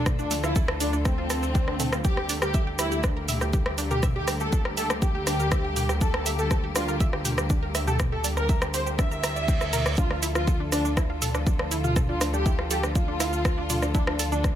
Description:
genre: melodic techno.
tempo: 121 BPM.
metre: 4/4.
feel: straight.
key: unclear.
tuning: A4 = 440 Hz.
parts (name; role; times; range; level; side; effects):
wide unison lead; melody; 0.0-14.5 s; C4 to E5; -32 LUFS; equal; sidechain pumping, ping-pong delay.
rich studio violin section; second line; 0.0-14.5 s; C4 to E5; -35 LUFS; left 1 dB; sidechain pumping, ping-pong delay.
muted studio string section; sustained chords; 0.0-14.6 s; D3 to A4; -34 LUFS; left 1 dB; sidechain pumping.
dark detuned saw bass; bass; 0.0-14.6 s; D2; -30 LUFS; equal; sidechain pumping.
wide unison pluck; arpeggios; 0.1-14.5 s; A3 to Bb6; -34 LUFS; right 1 dB; sidechain pumping, ping-pong delay.
electronic kick drum; drums; 0.1-14.5 s; none; -24 LUFS; equal; none.
house drum kit; drums; 0.1-14.5 s; hi-hat, rim click, shaker, toms; -29 LUFS; equal; none.
reverse cymbal; sound effects; 9.3-10.0 s; none; -38 LUFS; right 5 dB; none.
room: little or no reverb.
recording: none.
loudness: -23 LUFS.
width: side -11 dB against mid.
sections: 0.0-14.6 A section.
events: reverse cymbal 9.3-10.0.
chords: 0.0 Dm; 2.0 Gmadd9/D; 10.0 Dm.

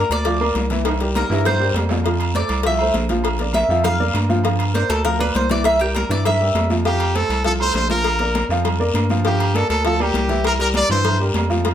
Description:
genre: latin, salsa.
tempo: 200 BPM.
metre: 4/4.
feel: straight.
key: F major.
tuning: A4 = 440 Hz.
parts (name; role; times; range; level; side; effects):
Cuban tres; melody; 0.0-6.7 s; G4 to F5; -20 LUFS; equal; none.
warm baby grand piano; accompaniment; 0.0-11.7 s; E3 to F5; -23 LUFS; right 1 dB; none.
round analog bass; bass; 0.0-11.7 s; Bb1 to G2; -21 LUFS; equal; none.
agogo bells and timbales; percussion; 0.1-11.7 s; none; -28 LUFS; right 6 dB; none.
congas; percussion; 0.1-11.7 s; none; -27 LUFS; left 2 dB; none.
cowbell; percussion; 0.1-11.7 s; none; -28 LUFS; left 8 dB; none.
guiro; percussion; 0.1-11.7 s; none; -33 LUFS; left 5 dB; none.
brilliant trumpet; melody; 6.9-11.2 s; G4 to D5; -20 LUFS; equal; slapback echo.
room: moderate studio ambience, RT60 0.5 s.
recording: none.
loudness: -16 LUFS.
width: side -10 dB against mid.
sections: 0.0-6.9 A section; 6.9-11.7 B section.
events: Cuban tres solo 0.0-6.9; drum fill 0.9-2.1.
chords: 0.0 Gm7 (rootless); 0.9 C7; 2.1 Fmaj7; 3.2 Bb; 4.5 Gm7; 5.7 C7; 6.9 F; 8.1 Bb; 9.2 Gm7; 10.4 C7.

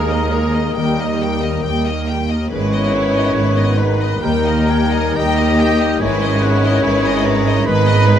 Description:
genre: classical, slow romantic movement for symphony orchestra.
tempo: 61-74 BPM.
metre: 4/4.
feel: rubato.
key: G# minor.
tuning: A4 = 440 Hz.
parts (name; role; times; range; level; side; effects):
rich studio violin section; melody; 0.0-8.2 s; A#4 to G5; -24 LUFS; left 4 dB; none.
clear oboe; second line; 0.0-8.2 s; D#5 to B5; -27 LUFS; right 1 dB; none.
large flute ensemble; second line; 0.0-8.2 s; A#4 to D#5; -27 LUFS; equal; none.
mellow clarinet; second line; 0.0-8.2 s; G4 to B4; -30 LUFS; left 2 dB; none.
warm studio violin section; second line; 0.0-8.2 s; D#4 to G4; -25 LUFS; left 4 dB; none.
clear studio viola section; accompaniment; 0.0-8.2 s; G3 to B4; -29 LUFS; right 1 dB; none.
mellow bassoon; accompaniment; 0.0-8.2 s; D#3; -27 LUFS; right 1 dB; none.
bright trombone section; sustained chords; 0.0-8.2 s; D#3 to B3; -30 LUFS; right 4 dB; none.
mellow French horn section; sustained chords; 0.0-8.2 s; A#3 to D#4; -23 LUFS; left 3 dB; none.
concert harp; arpeggios; 0.0-8.2 s; G#2 to G#5; -27 LUFS; left 9 dB; none.
dark trumpet; stabs; 0.0-8.2 s; A#4 to D#5; -23 LUFS; right 1 dB; none.
rich studio cello section; bass; 0.0-8.2 s; D#2 to G#2; -19 LUFS; right 2 dB; none.
rich studio double bass section; bass; 0.0-8.2 s; G#1 to D#2; -22 LUFS; right 2 dB; none.
room: moderate concert hall reverb, RT60 2.1 s.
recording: none.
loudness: -14 LUFS.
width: side -9 dB against mid.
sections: 0.0-8.2 A section.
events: none.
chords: 0.0 D#sus4; 0.8 D#; 2.5 G#m; 4.2 D#; 6.0 G#m.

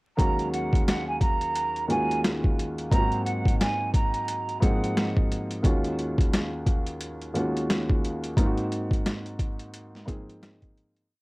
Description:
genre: hip hop, boom-bap hip-hop.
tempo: 88 BPM.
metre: 4/4.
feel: swing 60% on 16ths.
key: Eb dorian.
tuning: A4 = 439 Hz.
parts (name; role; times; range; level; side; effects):
breathy mellow jazz flute; melody; 0.2-5.1 s; Gb5 to Bb5; -29 LUFS; right 2 dB; high-pass filter, low-pass filter, tape echo.
dark concert grand piano; accompaniment; 0.2-11.1 s; Eb2 to Ab4; -29 LUFS; equal; high-pass filter, low-pass filter.
boom bap sampler-style drum kit; drums; 0.2-11.1 s; hi-hat, kick drum, snare drum; -24 LUFS; equal; overdrive.
room: light reverb.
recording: worn, warbling old tape, cassette tape, vinyl crackle, warbly pitch drift.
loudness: -23 LUFS.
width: side -22 dB against mid.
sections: 0.2-11.1 verse.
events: fade-out 8.4-11.1.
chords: 0.2 Ebm11; 2.9 Ab13; 5.6 Ebm11; 8.4 Ab13.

